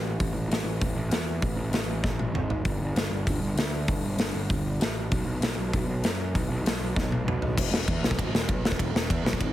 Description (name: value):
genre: punk rock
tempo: 195 BPM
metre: 4/4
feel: straight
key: unclear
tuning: A4 = 440 Hz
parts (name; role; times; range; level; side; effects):
- fuzz picked electric bass; bass; 0.0-9.5 s; E1 to F#2; -28 LUFS; equal; overdrive
- big rock drum kit; drums; 0.2-9.5 s; crash cymbal, hi-hat, kick drum, ride cymbal, snare drum, toms; -27 LUFS; equal; none
room: little or no reverb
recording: heavily compressed radio sound, multiband compression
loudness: -25 LUFS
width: side -13 dB against mid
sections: 0.0-7.6 A section; 7.6-9.5 B section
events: half time 0.0-7.6; drum fill 2.0-2.7, 7.0-7.6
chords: none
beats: | 0.20 0.51 0.81 1.12 | 1.43 1.74 2.04 2.35 | 2.66 2.96 3.27 3.58 | 3.88 4.19 4.50 4.81 | 5.11 5.42 5.73 6.04 | 6.34 6.65 6.96 7.26 | 7.57 7.88 8.18 8.49 | 8.79 9.10 9.41